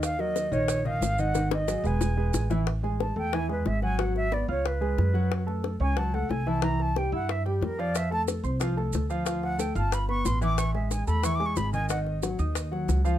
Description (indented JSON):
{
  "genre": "Afro-Cuban jazz",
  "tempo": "182 BPM",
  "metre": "4/4",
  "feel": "straight",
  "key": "unclear",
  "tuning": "A4 = 436 Hz",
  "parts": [
    { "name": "mellow concert flute", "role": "melody", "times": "0.0-12.0 s", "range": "G4 to D6", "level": "-31 LUFS", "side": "right 1 dB", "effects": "none" },
    { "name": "warm grand piano", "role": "accompaniment", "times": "0.0-13.2 s", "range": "Eb3 to F6", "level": "-30 LUFS", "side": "equal", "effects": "none" },
    { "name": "upright bass", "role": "bass", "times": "0.0-13.2 s", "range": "Fb1 to G2", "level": "-28 LUFS", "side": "equal", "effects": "none" },
    { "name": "bongos", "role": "percussion", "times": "0.0-13.2 s", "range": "none", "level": "-33 LUFS", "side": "left 8 dB", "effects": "none" },
    { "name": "maracas", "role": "percussion", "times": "0.0-2.7, 7.9-13.2 s", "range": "none", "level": "-39 LUFS", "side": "right 7 dB", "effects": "none" }
  ],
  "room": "light reverb",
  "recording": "close, detailed microphones",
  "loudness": "-25 LUFS",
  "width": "side -12 dB against mid",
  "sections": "0.0-2.7 A section; 2.7-13.2 B section",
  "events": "drum fill 1.3-2.7; flute solo 2.7-13.2",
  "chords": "0.0 Ebm9; 1.3 Ab5; 2.0 E; 2.7 A5; 4.0 E13/G#; 4.6 C#7; 5.3 F#m7; 6.6 C; 7.9 F; 9.3 Dm; 9.9 G9; 10.6 A5; 11.9 G#5"
}